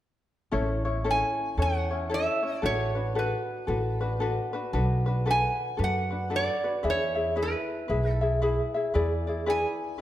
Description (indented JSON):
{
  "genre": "Hawaiian",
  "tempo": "114 BPM",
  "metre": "4/4",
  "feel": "swing 62% on 8ths",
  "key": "A major",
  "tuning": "A4 = 440 Hz",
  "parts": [
    { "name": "ukulele", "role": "accompaniment", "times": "0.5-10.0 s", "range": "C#4 to E5", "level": "-29 LUFS", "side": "left 2 dB", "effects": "none" },
    { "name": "upright bass", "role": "bass", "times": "0.5-9.6 s", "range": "A1 to F#2", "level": "-29 LUFS", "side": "right 1 dB", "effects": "none" },
    { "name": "metal-body resonator slide guitar", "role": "melody", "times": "1.1-10.0 s", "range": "B4 to G#5", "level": "-29 LUFS", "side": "right 2 dB", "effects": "none" }
  ],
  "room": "wet recital hall reverb, RT60 1.5 s",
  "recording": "none",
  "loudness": "-25 LUFS",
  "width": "side -13 dB against mid",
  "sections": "0.5-10.0 A section",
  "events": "none",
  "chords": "0.5 A; 2.6 D6/A; 4.7 Bm7; 6.8 E; 8.9 E7"
}